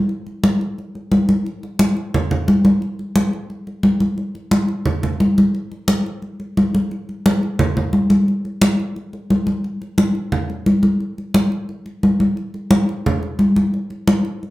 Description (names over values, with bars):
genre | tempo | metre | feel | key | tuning
latin | 176 BPM | 4/4 | straight | none | none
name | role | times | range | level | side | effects
congas | percussion | 0.1-14.5 s | none | -16 LUFS | equal | none
room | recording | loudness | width
wet studio reverb, RT60 0.5 s | band playing live in one room | -16 LUFS | side -17 dB against mid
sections
0.0-9.6 A section; 9.6-14.5 B section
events
none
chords
none